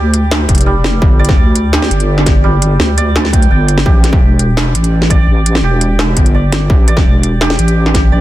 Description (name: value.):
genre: half-time drum and bass.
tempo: 169 BPM.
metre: 4/4.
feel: half-time.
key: unclear.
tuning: A4 = 440 Hz.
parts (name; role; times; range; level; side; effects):
santur; arpeggios; 0.0-8.2 s; G3 to G5; -19 LUFS; right 3 dB; ping-pong delay.
deep soft wobble bass; bass; 0.0-8.2 s; E1 to D2; -12 LUFS; equal; chorus, tube saturation.
industrial drum kit; drums; 0.1-8.0 s; hi-hat, snare drum; -16 LUFS; equal; none.
electronic kick drum; drums; 0.5-8.0 s; none; -10 LUFS; equal; distortion.
room: little or no reverb.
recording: dense, heavily limited modern master.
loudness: -9 LUFS.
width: side -15 dB against mid.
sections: 0.0-8.2 A section.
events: none.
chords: 0.0 G5; 3.9 A5.